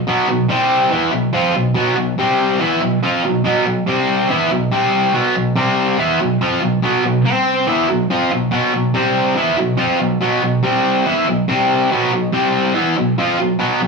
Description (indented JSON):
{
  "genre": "rock",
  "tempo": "142 BPM",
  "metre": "4/4",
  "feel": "straight",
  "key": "unclear",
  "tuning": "A4 = 438 Hz",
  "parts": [
    { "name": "distorted electric guitar", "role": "solo", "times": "0.0-13.9 s", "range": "B2 to E#4", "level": "-14 LUFS", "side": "equal", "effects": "distortion" }
  ],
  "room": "moderate studio reverb, RT60 0.6 s",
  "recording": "rough rehearsal-room recording, studio ambience",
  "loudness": "-14 LUFS",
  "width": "side -4 dB against mid",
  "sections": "0.0-5.1 A section; 5.1-13.9 B section",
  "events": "none",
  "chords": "0.5 C5; 0.9 B5; 2.2 C5; 2.6 B5; 3.9 C5; 4.3 B5; 4.7 C5; 5.1 B5; 5.6 C5; 6.0 B5; 7.3 C5; 7.7 B5; 9.0 C5; 9.4 B5; 10.6 C5; 11.1 B5; 11.5 C5; 11.9 B5; 12.3 C5; 12.8 B5"
}